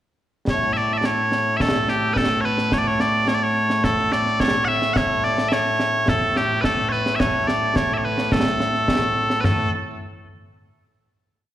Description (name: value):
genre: scottish traditional, Scottish pipe music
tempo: 107 BPM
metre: 4/4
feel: straight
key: A major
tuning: A4 = 439 Hz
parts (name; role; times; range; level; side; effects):
- loud bright bagpipes; melody; 0.5-9.7 s; A2 to F#5; -19 LUFS; equal; slapback echo, tape echo
- concert snare drum, concert bass drum and concert toms; drums; 0.5-9.6 s; none; -24 LUFS; equal; slapback echo
room: light reverb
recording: live gig heard through the venue's PA, recital hall reverb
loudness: -18 LUFS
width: side -12 dB against mid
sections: 0.5-9.4 A section; 9.4-11.5 final note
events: none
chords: none